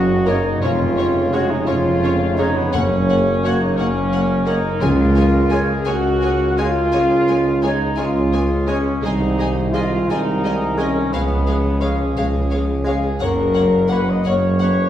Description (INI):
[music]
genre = classical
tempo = 57 BPM (dotted quarters)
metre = 12/8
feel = rubato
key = unclear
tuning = A4 = 438 Hz
[part]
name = mellow cor anglais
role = second line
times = 0.0-14.9 s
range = B3 to D#5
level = -28 LUFS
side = right 2 dB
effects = none
[part]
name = warm clarinet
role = second line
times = 0.0-14.9 s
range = F#4 to D#5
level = -29 LUFS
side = left 1 dB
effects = none
[part]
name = mellow French horn section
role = sustained chords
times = 0.0-14.9 s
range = B3 to D#5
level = -21 LUFS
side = left 2 dB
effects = none
[part]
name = warm trombone section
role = sustained chords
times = 0.0-14.9 s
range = C#3 to A#3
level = -27 LUFS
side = right 1 dB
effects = none
[part]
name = warm studio cello section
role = bass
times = 0.0-14.9 s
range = B#1 to F#2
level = -23 LUFS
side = right 1 dB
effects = none
[part]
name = warm studio double bass section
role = bass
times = 0.0-14.9 s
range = E#1 to C#2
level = -24 LUFS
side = right 1 dB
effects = none
[part]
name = warm tuba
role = bass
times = 0.0-14.9 s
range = E#1 to C#2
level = -24 LUFS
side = right 1 dB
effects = none
[part]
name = warm studio violin section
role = melody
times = 0.3-14.7 s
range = C#5 to G#5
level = -32 LUFS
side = left 3 dB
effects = none
[part]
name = dark studio violin section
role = second line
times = 0.3-14.7 s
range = A#4 to D#5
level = -33 LUFS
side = left 3 dB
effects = none
[part]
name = mellow concert flute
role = second line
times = 0.3-14.1 s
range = C#5 to F#5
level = -30 LUFS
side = left 1 dB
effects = none
[part]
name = mellow bassoon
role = accompaniment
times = 0.3-14.0 s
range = G#3 to A#3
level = -28 LUFS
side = right 1 dB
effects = none
[part]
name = warm studio viola section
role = accompaniment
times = 0.3-14.7 s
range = G#3 to C#4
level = -30 LUFS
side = equal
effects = none
[part]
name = timpani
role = percussion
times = 2.7-5.8 s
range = F#2 to C#3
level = -26 LUFS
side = left 1 dB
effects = none
[sound]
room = wet recital hall reverb, RT60 1.4 s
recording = heard from further back in the room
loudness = -15 LUFS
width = side -11 dB against mid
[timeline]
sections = 0.0-14.9 A section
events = none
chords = 0.0 F#; 0.6 C#/E#; 2.7 F#; 4.8 C#; 9.0 G#/B#; 11.1 C#; 13.2 F#